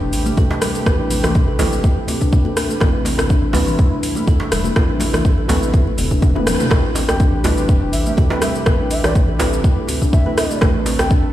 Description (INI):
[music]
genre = afro house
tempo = 123 BPM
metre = 4/4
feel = swing 55% on 16ths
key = A minor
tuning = A4 = 440 Hz
[part]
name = warm analog pad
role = sustained chords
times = 0.0-11.3 s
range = C3 to B4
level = -27 LUFS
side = equal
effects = chorus, sidechain pumping
[part]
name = kalimba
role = arpeggios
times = 0.0-11.2 s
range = E3 to A4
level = -23 LUFS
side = equal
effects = sidechain pumping, digital delay
[part]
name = deep mellow chord stab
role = stabs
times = 0.0-11.3 s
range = A3 to B4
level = -26 LUFS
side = right 3 dB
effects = chorus, sidechain pumping, digital delay
[part]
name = round analog bass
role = bass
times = 0.0-11.3 s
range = E1 to A1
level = -22 LUFS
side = equal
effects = tube saturation, sidechain pumping
[part]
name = deep house drum kit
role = drums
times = 0.1-11.2 s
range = hi-hat, rim click, shaker, toms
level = -22 LUFS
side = equal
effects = overdrive
[part]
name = congas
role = percussion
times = 0.3-6.7 s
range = none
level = -28 LUFS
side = left 5 dB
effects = none
[part]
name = electronic kick drum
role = drums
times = 0.4-11.2 s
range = none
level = -15 LUFS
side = equal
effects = overdrive
[part]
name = djembe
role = percussion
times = 0.4-11.1 s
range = none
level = -26 LUFS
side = right 1 dB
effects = none
[part]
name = breathy bass bansuri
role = melody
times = 7.1-11.1 s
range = D5 to G5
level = -27 LUFS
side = equal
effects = digital delay
[sound]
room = light reverb, small room ambience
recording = played on a big sound system in a bare room, large studio reverb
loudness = -14 LUFS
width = side -13 dB against mid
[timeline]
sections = 0.0-6.7 A section; 6.7-11.3 B section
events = drum fill 6.2-6.7; band accent 6.5; drop 6.7-11.3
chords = 0.0 Am9